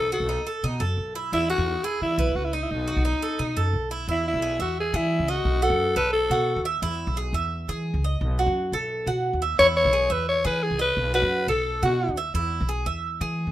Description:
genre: latin, Cuban son and guajira.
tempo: 174 BPM.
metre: 4/4.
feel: straight.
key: E major.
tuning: A4 = 441 Hz.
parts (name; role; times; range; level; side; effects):
raspy alto saxophone; melody; 0.0-6.6, 9.6-12.2 s; D#4 to C#5; -23 LUFS; left 1 dB; none.
Cuban tres; arpeggios; 0.0-13.5 s; D#4 to E5; -28 LUFS; right 3 dB; none.
upright bass; bass; 0.0-13.5 s; B1 to E3; -27 LUFS; equal; none.
room: light reverb.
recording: minimal, uncompressed stereo recording.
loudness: -22 LUFS.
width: side -13 dB against mid.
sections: 0.0-4.1 A section; 4.1-13.5 B section.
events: none.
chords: 0.0 B7; 1.3 E6; 2.7 B7; 4.1 E6; 5.5 B7; 6.8 E6; 8.2 B7; 9.6 E6; 11.0 B7; 12.4 E.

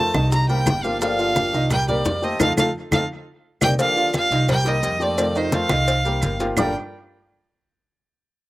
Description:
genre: latin, Cuban son and guajira.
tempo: 173 BPM.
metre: 4/4.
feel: straight.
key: G minor.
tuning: A4 = 440 Hz.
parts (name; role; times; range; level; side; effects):
clear violin; melody; 0.0-6.7 s; C5 to Bb5; -22 LUFS; equal; none.
flamenco guitar; accompaniment; 0.0-6.7 s; G2 to G4; -27 LUFS; left 3 dB; slapback echo.
clear baby grand piano; arpeggios; 0.0-6.7 s; Eb3 to F5; -26 LUFS; right 3 dB; slapback echo.
upright bass; bass; 0.0-6.7 s; G1 to F2; -24 LUFS; equal; none.
bongos and cowbell; percussion; 0.1-6.7 s; none; -26 LUFS; left 3 dB; none.
claves; percussion; 0.1-6.6 s; none; -30 LUFS; right 4 dB; none.
congas; percussion; 0.1-6.6 s; none; -26 LUFS; left 1 dB; none.
maracas; percussion; 0.1-6.7 s; none; -34 LUFS; right 4 dB; none.
room: little or no reverb.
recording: recorded outdoors, with no room sound.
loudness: -18 LUFS.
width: side -18 dB against mid.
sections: 0.0-3.8 A section; 3.8-6.6 B section; 6.6-8.0 C section.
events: band accent 2.4-3.8; drum fill 2.9-3.8.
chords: 0.3 Cm7; 1.0 Gm7; 1.7 Cm7; 2.4 F7; 3.1 Cm7; 3.8 Gm7; 4.5 Cm7; 5.2 F7; 5.9 Cm7; 6.6 Gm7.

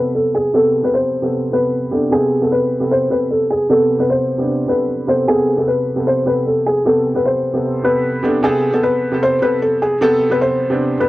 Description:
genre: hip hop.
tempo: 152 BPM.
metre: 4/4.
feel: half-time.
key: A harmonic minor.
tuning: A4 = 441 Hz.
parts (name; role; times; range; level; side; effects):
felt-muted upright piano; melody; 0.0-11.1 s; G#4 to C5; -16 LUFS; left 1 dB; low-pass filter.
clear grand piano; accompaniment; 0.0-11.1 s; C3 to A4; -18 LUFS; right 1 dB; low-pass filter, cassette tape.
room: light reverb, small room ambience.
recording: home recording on cassette.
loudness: -14 LUFS.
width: side -17 dB against mid.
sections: 0.0-11.1 A section.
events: filter sweep 0.0-8.4.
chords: 0.0 Amadd9.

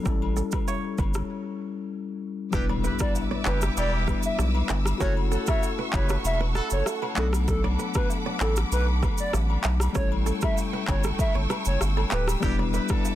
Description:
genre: afrobeats.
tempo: 97 BPM.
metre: 4/4.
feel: straight.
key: unclear.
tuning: A4 = 439 Hz.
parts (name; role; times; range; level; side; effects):
tine electric piano; accompaniment; 0.0-13.2 s; F#3 to B4; -32 LUFS; left 6 dB; overdrive.
kora; riff; 0.1-13.2 s; G4 to E5; -35 LUFS; right 8 dB; ping-pong delay.
saturated sub bass; bass; 0.1-12.8 s; D1 to B1; -25 LUFS; equal; none.
afro-pop drum kit; drums; 0.1-13.2 s; handclaps, kick drum, rim click, shaker; -28 LUFS; equal; overdrive.
agogo bells and woodblock; percussion; 0.2-13.2 s; none; -38 LUFS; left 10 dB; none.
hollow clarinet-like synth lead; melody; 2.5-12.3 s; A4 to E5; -32 LUFS; equal; chorus, ping-pong delay.
warm horn section; second line; 2.5-7.3, 12.4-13.1 s; A3 to C#5; -35 LUFS; equal; none.
warm symphonic string section; sustained chords; 2.5-13.2 s; A4 to E6; -35 LUFS; right 1 dB; none.
impact; sound effects; 2.5-5.0 s; none; -36 LUFS; right 1 dB; none.
room: small room ambience.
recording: dense, heavily limited modern master.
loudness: -23 LUFS.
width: side -13 dB against mid.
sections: 0.0-2.5 A section; 2.5-13.2 B section.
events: break 1.3-2.5; impact 2.5-5.0.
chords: 0.1 A7; 2.5 Em7; 5.0 F#m7; 7.2 Bm7; 10.0 A7; 12.4 Em7.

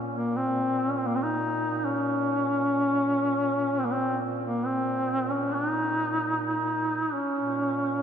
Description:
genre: caucasian folk, Caucasian lament.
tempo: 64-72 BPM.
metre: 3/4.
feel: rubato.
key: Bb minor.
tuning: A4 = 443 Hz.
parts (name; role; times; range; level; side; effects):
warm duduk; drone; 0.0-8.0 s; Bb2; -35 LUFS; right 2 dB; stereo widening.
mellow duduk; melody; 0.2-8.0 s; Bb3 to Eb4; -25 LUFS; equal; tape echo.
room: wet lush hall reverb, RT60 3.1 s.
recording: dreamy mix soaked in reverb.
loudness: -24 LUFS.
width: side -8 dB against mid.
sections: 0.0-8.0 A section.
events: none.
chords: none.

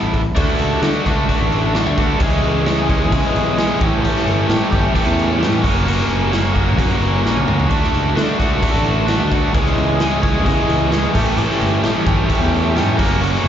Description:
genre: indie rock.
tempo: 131 BPM.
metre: 4/4.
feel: straight.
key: unclear.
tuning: A4 = 440 Hz.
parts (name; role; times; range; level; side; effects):
crunchy overdriven guitar; riff; 0.0-13.5 s; E3 to A4; -17 LUFS; equal; slapback echo.
modern bright picked electric bass; bass; 0.0-13.5 s; F#1 to D3; -20 LUFS; equal; none.
raw garage drum kit; drums; 0.1-13.4 s; crash cymbal, hi-hat, kick drum, snare drum, toms; -20 LUFS; equal; none.
room: light reverb.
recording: live gig heard through the venue's PA, club reverb, nothing above 7.5 kHz.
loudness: -14 LUFS.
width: side -9 dB against mid.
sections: 0.4-13.5 A section.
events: drum fill 7.2-7.7.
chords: 0.4 Dmaj7; 2.2 C#m7; 3.8 A5; 5.6 F#; 7.7 Dmaj7; 9.5 C#m; 11.2 A5.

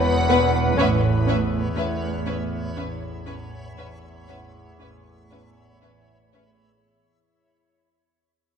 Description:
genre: cinematic, suspense film score.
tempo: 60 BPM.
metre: 3/4.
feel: straight.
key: unclear.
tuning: A4 = 443 Hz.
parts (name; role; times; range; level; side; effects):
backwards swelling texture; sustained chords; 0.0-6.8 s; B4 to B5; -28 LUFS; left 1 dB; built-in reverb.
dark studio cello section; bass; 0.0-6.7 s; E2 to A2; -27 LUFS; right 3 dB; none.
warm symphonic double bass section; bass; 0.0-6.7 s; E1 to A1; -28 LUFS; right 4 dB; none.
overtone-sweeping drone; drone; 0.0-6.8 s; E2; -29 LUFS; left 1 dB; chorus, built-in reverb.
felt-muted upright piano; texture; 0.0-6.9 s; C#5 to F#5; -34 LUFS; left 3 dB; none.
dark studio violin section; melody; 0.3-6.4 s; E5 to F#5; -32 LUFS; left 7 dB; none.
rich studio violin section; second line; 0.3-6.4 s; B4; -28 LUFS; left 2 dB; none.
warm studio viola section; accompaniment; 0.3-6.4 s; B3 to C#4; -28 LUFS; equal; none.
room: wet scoring stage reverb, RT60 1.8 s.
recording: dark, warm production.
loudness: -20 LUFS.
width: side -7 dB against mid.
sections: 0.0-6.8 A section.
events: fade-out 0.0-6.8.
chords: 0.0 Esus2; 0.8 Aadd9.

